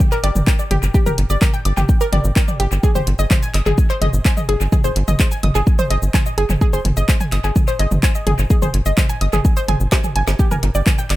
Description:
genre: melodic techno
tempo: 127 BPM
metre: 4/4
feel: straight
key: unclear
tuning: A4 = 441 Hz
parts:
  - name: deep house drum kit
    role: drums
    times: 0.0-11.2 s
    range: handclaps, hi-hat, shaker, snare drum, toms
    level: -22 LUFS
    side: right 1 dB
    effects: small room ambience, tape echo
  - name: electronic kick drum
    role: drums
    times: 0.0-11.0 s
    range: none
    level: -15 LUFS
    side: equal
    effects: small room ambience
  - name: analog pluck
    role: arpeggios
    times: 0.1-11.1 s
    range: G4 to Ab6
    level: -23 LUFS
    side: equal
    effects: chorus, sidechain pumping, tape echo
  - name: tight sequencer bass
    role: bass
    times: 0.2-11.2 s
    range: G1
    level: -18 LUFS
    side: equal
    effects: sidechain pumping
room: little or no reverb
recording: echo-heavy mix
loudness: -14 LUFS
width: side -16 dB against mid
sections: 0.0-11.2 A section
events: drum fill 9.9-10.4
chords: 0.0 Gm; 2.8 Ab/G; 10.4 Gm

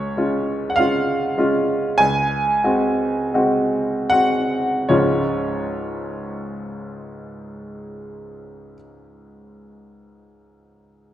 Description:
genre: classical, romantic nocturne for solo piano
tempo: 36-50 BPM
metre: 4/4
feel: rubato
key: Db major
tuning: A4 = 440 Hz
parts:
  - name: warm baby grand piano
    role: solo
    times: 0.0-11.1 s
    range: Db2 to Ab5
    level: -19 LUFS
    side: equal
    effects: none
room: wet recital hall reverb, RT60 1.8 s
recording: none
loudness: -18 LUFS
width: side -12 dB against mid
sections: 0.0-4.9 A section; 4.9-10.6 B section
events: slowing down 0.0-4.9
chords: 0.0 Db; 2.0 Ab7/Db; 4.9 Db

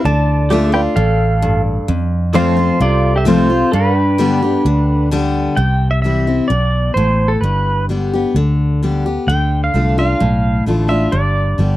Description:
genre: honky-tonk and classic country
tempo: 130 BPM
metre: 4/4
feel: straight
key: C major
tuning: A4 = 437 Hz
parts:
  - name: pedal steel guitar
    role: melody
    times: 0.0-11.8 s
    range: D4 to A5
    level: -18 LUFS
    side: right 1 dB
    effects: none
  - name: picked steel-string acoustic guitar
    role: accompaniment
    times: 0.0-11.8 s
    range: F2 to G4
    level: -17 LUFS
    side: left 2 dB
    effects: none
  - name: pedal steel guitar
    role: sustained chords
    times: 0.0-5.6 s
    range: A4 to G5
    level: -24 LUFS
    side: right 3 dB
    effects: lush chorus
  - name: vintage muted fingered electric bass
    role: bass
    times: 0.0-11.8 s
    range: G1 to G2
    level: -16 LUFS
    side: equal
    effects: none
room: light reverb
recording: dry, close 1970s-style studio recording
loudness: -13 LUFS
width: side -15 dB against mid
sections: 0.0-5.6 A section; 5.6-11.8 B section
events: none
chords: 0.0 Dm; 1.9 F; 3.7 G; 5.6 C; 7.4 G; 9.3 Dm; 11.1 G

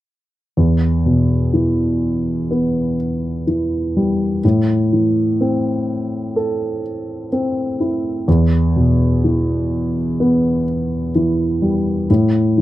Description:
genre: pop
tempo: 62 BPM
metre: 4/4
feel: straight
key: E minor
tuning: A4 = 440 Hz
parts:
  - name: dark baby grand piano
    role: accompaniment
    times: 0.6-12.6 s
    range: E2 to A4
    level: -15 LUFS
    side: equal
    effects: none
room: moderate small room reverb, RT60 0.5 s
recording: rough home demo mix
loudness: -15 LUFS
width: side -15 dB against mid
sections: 0.6-12.6 A section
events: none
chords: 0.6 Em; 4.4 Am; 8.3 Em; 12.1 N.C.

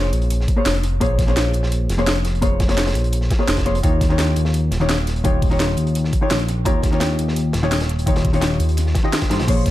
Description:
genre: liquid drum and bass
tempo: 170 BPM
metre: 4/4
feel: straight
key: unclear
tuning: A4 = 440 Hz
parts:
  - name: hollow-body jazz guitar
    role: accompaniment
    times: 0.0-9.7 s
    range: Eb3 to Eb5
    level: -22 LUFS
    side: left 2 dB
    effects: dub echo
  - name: smooth synth bass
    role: bass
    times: 0.0-9.7 s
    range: Eb1 to G2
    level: -20 LUFS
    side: equal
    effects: none
  - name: crunchy breakbeat drum kit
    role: drums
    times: 0.1-9.7 s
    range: hi-hat, snare drum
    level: -31 LUFS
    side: equal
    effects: high-pass filter on hats, high-pass filter on snare, high-pass filter on room
  - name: drum and bass drum kit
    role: drums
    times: 0.1-9.7 s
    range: crash cymbal, hi-hat, snare drum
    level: -25 LUFS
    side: equal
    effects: overdrive
  - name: electronic kick drum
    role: drums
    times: 0.5-9.7 s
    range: none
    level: -19 LUFS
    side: equal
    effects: overdrive
room: light reverb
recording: dark, warm production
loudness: -16 LUFS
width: side -15 dB against mid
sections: 0.0-9.5 A section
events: drop 0.0-9.5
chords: 0.0 Bbm7; 3.8 Eb9

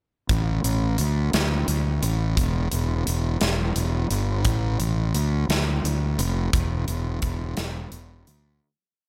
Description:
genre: quiet-loud alternative rock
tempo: 58 BPM (dotted quarters)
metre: 6/8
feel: straight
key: unclear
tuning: A4 = 440 Hz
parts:
  - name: fuzz fingered electric bass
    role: bass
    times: 0.3-8.6 s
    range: E1 to D2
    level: -26 LUFS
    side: equal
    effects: overdrive
  - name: big rock drum kit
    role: drums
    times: 0.3-8.4 s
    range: hi-hat, kick drum, snare drum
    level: -29 LUFS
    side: equal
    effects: none
room: little or no reverb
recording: none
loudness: -24 LUFS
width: mono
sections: 0.3-8.6 verse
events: fade-out 6.5-8.6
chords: none

